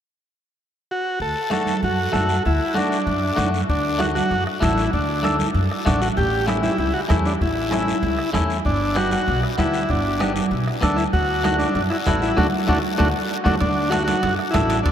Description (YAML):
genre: latin, cumbia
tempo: 194 BPM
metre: 4/4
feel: straight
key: D major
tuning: A4 = 440 Hz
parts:
  - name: combo organ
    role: melody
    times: 0.9-14.9 s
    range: A3 to A4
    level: -22 LUFS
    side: equal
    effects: slapback echo
  - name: upright bass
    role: bass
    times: 1.2-14.9 s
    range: G1 to F#2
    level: -25 LUFS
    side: equal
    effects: none
  - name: guiro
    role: percussion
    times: 1.2-14.9 s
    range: none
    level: -35 LUFS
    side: left 6 dB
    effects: none
  - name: clean electric guitar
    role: accompaniment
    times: 1.5-14.8 s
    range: A3 to A4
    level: -26 LUFS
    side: left 1 dB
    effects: none
  - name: congas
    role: percussion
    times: 1.5-14.7 s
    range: none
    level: -26 LUFS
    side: right 3 dB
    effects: none
  - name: bombo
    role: percussion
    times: 3.7-14.9 s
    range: none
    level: -26 LUFS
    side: equal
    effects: none
  - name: timbales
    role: percussion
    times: 13.6-14.9 s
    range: none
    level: -34 LUFS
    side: right 6 dB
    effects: none
room: wet huge ambient reverb, RT60 8.6 s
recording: in a vast, echoing space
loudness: -18 LUFS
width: side -9 dB against mid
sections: 0.0-1.2 A section; 1.2-3.7 B section; 3.7-13.6 C section; 13.6-14.9 C section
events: band accent 12.4-13.6; drum fill 13.1-13.6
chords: 0.0 N.C.; 1.2 D; 6.2 A; 8.6 G; 11.1 D